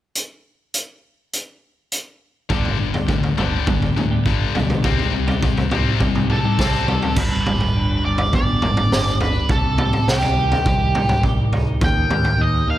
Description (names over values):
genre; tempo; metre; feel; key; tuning
quiet-loud alternative rock; 103 BPM; 4/4; straight; G major; A4 = 440 Hz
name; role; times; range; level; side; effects
raw garage drum kit; drums; 0.2-12.4 s; crash cymbal, hi-hat, kick drum, snare drum, toms; -20 LUFS; equal; none
twelve-string electric guitar; arpeggios; 2.5-12.8 s; G2 to G4; -26 LUFS; right 2 dB; none
heavy high-gain guitar; riff; 2.5-7.1 s; G2 to C4; -23 LUFS; left 8 dB; distortion
growling picked electric bass; bass; 2.5-12.8 s; G1 to Eb2; -23 LUFS; equal; overdrive
octave-fuzz lead guitar; melody; 6.3-12.8 s; G4 to G5; -22 LUFS; equal; distortion
room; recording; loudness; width
light reverb, small room ambience; none; -17 LUFS; side -13 dB against mid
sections
0.2-2.5 A section; 2.5-7.2 B section; 7.2-12.8 C section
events
none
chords
0.2 N.C.; 2.5 G; 4.8 Cm; 7.2 G; 9.5 Cm; 11.8 Eb